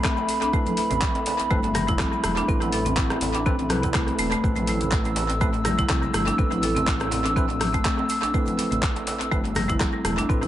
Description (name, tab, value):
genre	afro house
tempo	123 BPM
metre	4/4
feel	swing 55% on 16ths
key	A minor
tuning	A4 = 440 Hz
part	dark analog pad	sustained chords	0.0-10.5 s	C4 to E6	-28 LUFS	equal	chorus, sidechain pumping
part	marimba with hard mallets	arpeggios	0.0-10.5 s	G3 to A4	-28 LUFS	left 1 dB	sidechain pumping, tape echo
part	deep house drum kit	drums	0.0-10.5 s	handclaps, hi-hat, rim click	-29 LUFS	equal	tape echo
part	electronic kick drum	drums	0.0-10.4 s	none	-25 LUFS	equal	none
part	cabasa	percussion	0.0-10.4 s	none	-42 LUFS	left 4 dB	none
part	djembe	percussion	0.2-10.5 s	none	-35 LUFS	right 2 dB	tape echo
part	tine electric piano	stabs	0.5-10.5 s	C4 to B4	-32 LUFS	right 2 dB	medium stereo tremolo, sidechain pumping, tape echo
part	congas	percussion	0.7-10.5 s	none	-33 LUFS	left 2 dB	tape echo
part	dark detuned saw bass	bass	0.9-10.5 s	E1 to C2	-29 LUFS	equal	sidechain pumping
room	moderate spring reverb, RT60 2.4 s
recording	echo-heavy mix, nothing above 11.0 kHz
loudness	-21 LUFS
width	side -12 dB against mid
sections	0.0-10.5 A section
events	none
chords	0.0 Amadd9